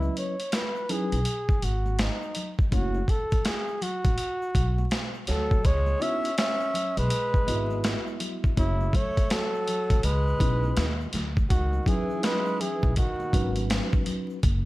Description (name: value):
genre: hip hop, jazz-hop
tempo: 82 BPM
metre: 4/4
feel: swing 62% on 16ths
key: C# minor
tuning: A4 = 437 Hz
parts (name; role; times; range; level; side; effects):
- breathy flugelhorn; melody; 0.0-13.7 s; D#4 to E5; -30 LUFS; equal; none
- mellow tine electric piano; accompaniment; 0.0-14.4 s; F#3 to E5; -32 LUFS; equal; medium stereo tremolo
- upright bass; bass; 0.0-14.7 s; F#1 to D#2; -27 LUFS; equal; none
- congas and egg shaker; percussion; 0.0-14.6 s; none; -41 LUFS; left 3 dB; none
- boom bap sampler-style drum kit; drums; 0.2-14.6 s; hi-hat, kick drum, snare drum; -26 LUFS; equal; none
- breathy tenor saxophone; second line; 5.3-13.7 s; C#3 to C#4; -35 LUFS; right 2 dB; none
room: small room ambience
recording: vinyl crackle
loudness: -24 LUFS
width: side -18 dB against mid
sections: 0.0-11.5 A section; 11.5-14.7 B section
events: none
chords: 0.0 C#m11; 2.7 F#m7; 5.7 C#m11; 8.6 F#m7; 10.0 C#m9; 11.5 C#m11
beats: 0.53 1.26 1.99 | 2.72 3.46 4.19 4.92 | 5.65 6.38 7.11 7.84 | 8.58 9.31 10.04 10.77 | 11.50 12.23 12.97 13.70 | 14.43